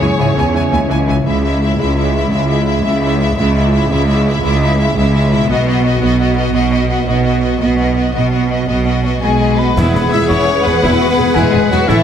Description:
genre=cinematic, heroic adventure film score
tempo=113 BPM (dotted quarters)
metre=12/8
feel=straight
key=C# minor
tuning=A4 = 443 Hz
part: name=rich symphonic violin section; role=melody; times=0.0-12.0 s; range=E4 to G#5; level=-21 LUFS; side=left 3 dB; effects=none
part: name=silver concert flute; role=second line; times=0.0-1.1, 9.2-12.0 s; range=E5 to E6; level=-22 LUFS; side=left 2 dB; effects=none
part: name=warm clarinet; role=second line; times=0.0-1.2, 9.8-12.0 s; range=E4 to B4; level=-22 LUFS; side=equal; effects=none
part: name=warm symphonic violin section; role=second line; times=0.0-12.0 s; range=E4 to F#5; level=-22 LUFS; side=left 3 dB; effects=none
part: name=rich symphonic viola section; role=accompaniment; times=0.0-12.0 s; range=E3 to A4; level=-22 LUFS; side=right 2 dB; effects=none
part: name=mellow French horn section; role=sustained chords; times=0.0-1.1, 9.2-12.0 s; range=E3 to E4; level=-18 LUFS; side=left 4 dB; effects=none
part: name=concert harp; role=arpeggios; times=0.0-12.0 s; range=A2 to E5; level=-24 LUFS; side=left 7 dB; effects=none
part: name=mellow trumpet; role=stabs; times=0.0-1.1 s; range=G#4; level=-22 LUFS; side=equal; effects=none
part: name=rich symphonic cello section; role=bass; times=0.0-12.0 s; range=C#2 to B2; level=-17 LUFS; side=right 3 dB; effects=none
part: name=rich symphonic double bass section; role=bass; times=0.0-12.0 s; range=E1 to C#2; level=-18 LUFS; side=right 1 dB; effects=none
part: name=timpani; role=percussion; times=1.3-1.8, 9.8-10.3 s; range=E2 to C#3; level=-23 LUFS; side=equal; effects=none
part: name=concert snare drum, clash cymbals and concert bass drum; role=drums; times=9.8-12.0 s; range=none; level=-22 LUFS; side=equal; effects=none
room=moderate scoring stage reverb, RT60 1.5 s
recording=heavily compressed radio sound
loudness=-11 LUFS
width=side -8 dB against mid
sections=0.0-1.3 A section; 1.3-9.8 B section; 9.8-12.0 C section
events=none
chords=0.0 C#m; 5.5 B; 9.8 Eadd9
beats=0.19 0.73 | 1.27 1.80 2.33 2.86 | 3.39 3.91 4.44 4.97 | 5.50 6.02 6.55 7.08 | 7.62 8.16 8.70 9.24 | 9.77 10.31 10.84 11.37 | 11.89

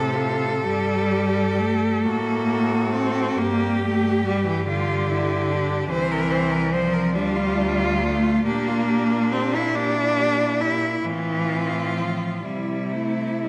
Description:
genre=classical, lyrical piece for cello ensemble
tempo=39-49 BPM (dotted quarters)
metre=6/8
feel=rubato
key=unclear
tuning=A4 = 440 Hz
part: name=clear cello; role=melody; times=0.0-13.5 s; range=Bb3 to A4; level=-30 LUFS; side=equal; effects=none
part: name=clear cello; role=second line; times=0.0-13.5 s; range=D4 to C5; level=-31 LUFS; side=equal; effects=none
part: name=clear cello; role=accompaniment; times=0.0-13.5 s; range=C3 to E4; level=-24 LUFS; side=equal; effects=none
part: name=rich cello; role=bass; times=0.0-13.5 s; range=C2 to C3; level=-32 LUFS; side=equal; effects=none
room=wet concert hall reverb, RT60 2.0 s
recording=none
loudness=-22 LUFS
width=mono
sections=0.0-13.5 A section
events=none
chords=0.0 F; 0.7 Gsus2; 2.1 Am6; 3.4 G5; 5.9 C7; 7.2 Dm; 8.5 Gm7/Bb; 9.8 Gm6/Bb; 11.1 F/A; 12.4 C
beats=| 0.65 2.06 | 3.39 4.68 | 5.91 7.17 | 8.46 9.75 | 11.06 12.45

